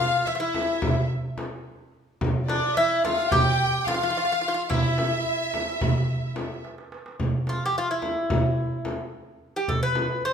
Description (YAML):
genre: Turkish makam ensemble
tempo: 217 BPM (eighths)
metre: 9/8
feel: straight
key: E makam kurdi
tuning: A4 = 444 Hz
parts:
  - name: Greek bouzouki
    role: melody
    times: 0.0-10.3 s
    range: D4 to C5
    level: -25 LUFS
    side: equal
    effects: none
  - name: rich studio violin section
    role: second line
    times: 0.0-6.6 s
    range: D5 to G5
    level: -27 LUFS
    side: left 1 dB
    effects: none
  - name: darbuka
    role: percussion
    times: 0.0-10.1 s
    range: none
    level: -28 LUFS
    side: right 2 dB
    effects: none
  - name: frame drum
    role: percussion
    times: 0.5-10.1 s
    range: none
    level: -30 LUFS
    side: left 2 dB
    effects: none
room: wet recital hall reverb, RT60 1.6 s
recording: minimal, uncompressed stereo recording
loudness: -22 LUFS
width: side -7 dB against mid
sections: 0.0-7.2 A section; 7.2-10.3 B section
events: drum fill 6.6-7.2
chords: none